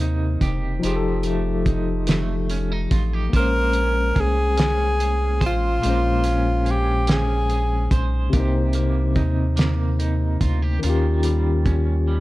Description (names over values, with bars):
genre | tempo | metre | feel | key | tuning
slow six-eight R&B | 48 BPM (dotted quarters) | 6/8 | straight | Bb dorian | A4 = 442 Hz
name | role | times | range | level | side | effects
electric guitar at the edge of break-up | second line | 0.0-12.2 s | C3 to C5 | -30 LUFS | right 4 dB | tremolo
barky tine electric piano | accompaniment | 0.0-12.2 s | Bb2 to C5 | -25 LUFS | left 3 dB | overdrive, medium tremolo
round analog bass | bass | 0.0-12.2 s | E1 to Eb2 | -22 LUFS | equal | none
cloth-damped thuddy drum kit | drums | 0.0-11.9 s | hi-hat, kick drum, snare drum | -23 LUFS | right 1 dB | none
breathy tenor saxophone | melody | 3.4-8.0 s | F4 to Bb4 | -23 LUFS | equal | slapback echo
room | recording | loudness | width
small room ambience | dark, warm production | -18 LUFS | side -18 dB against mid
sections
0.0-12.2 A section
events
none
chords
0.0 Cm7; 0.8 F9; 3.3 Bbm9; 8.3 Cm7; 10.8 Eb9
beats
| 0.83 2.08 | 3.33 4.58 | 5.83 7.08 | 8.33 9.58 | 10.83 12.08